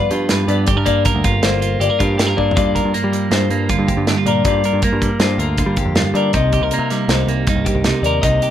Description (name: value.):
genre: math rock and midwest emo.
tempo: 159 BPM.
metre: 5/4.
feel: straight.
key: G minor.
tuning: A4 = 440 Hz.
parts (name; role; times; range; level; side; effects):
clean electric guitar; accompaniment; 0.0-8.5 s; G2 to B4; -18 LUFS; right 3 dB; phaser.
twelve-string electric guitar; arpeggios; 0.0-8.5 s; G4 to Eb5; -22 LUFS; left 7 dB; spring reverb, digital delay.
picked electric bass; bass; 0.1-8.4 s; G1 to G3; -20 LUFS; equal; none.
modern studio drum kit; drums; 0.1-8.5 s; hi-hat, kick drum, snare drum, toms; -20 LUFS; equal; none.
room: light reverb.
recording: rough home demo mix.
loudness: -14 LUFS.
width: side -10 dB against mid.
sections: 0.0-2.6 A section; 2.6-8.5 B section.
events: drum fill 2.4.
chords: 0.0 G7; 0.7 Gm7; 6.3 Cm7.